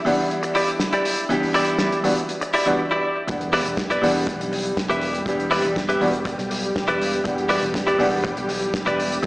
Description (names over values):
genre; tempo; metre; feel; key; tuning
nu-disco, nu disco; 121 BPM; 4/4; straight; E minor; A4 = 442 Hz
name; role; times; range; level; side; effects
bright baby grand piano; accompaniment; 0.0-9.3 s; E3 to F#5; -24 LUFS; equal; sidechain pumping, tape echo
lush unison pad; sustained chords; 0.0-9.3 s; G3 to E5; -29 LUFS; equal; chorus, sidechain pumping
damped 70s drum kit; drums; 0.1-9.3 s; hi-hat, snare drum; -28 LUFS; equal; small room ambience
direct-recorded clean electric guitar; riff; 0.4-9.2 s; E4 to E5; -22 LUFS; equal; wide subtle chorus, tape echo
fingered electric bass; bass; 3.3-9.3 s; E1 to B1; -30 LUFS; equal; tube saturation
kick drum; drums; 3.3-9.3 s; none; -32 LUFS; equal; small room ambience
room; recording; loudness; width
wet lush hall reverb, RT60 1.6 s, studio reverb; played on a big sound system in a bare room, stone room reverb, small speaker sound; -19 LUFS; side -21 dB against mid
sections
0.0-3.3 A section; 3.3-9.3 B section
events
build-up 0.0-3.3; break 2.8-3.3; drop 3.3-9.3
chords
0.0 Em7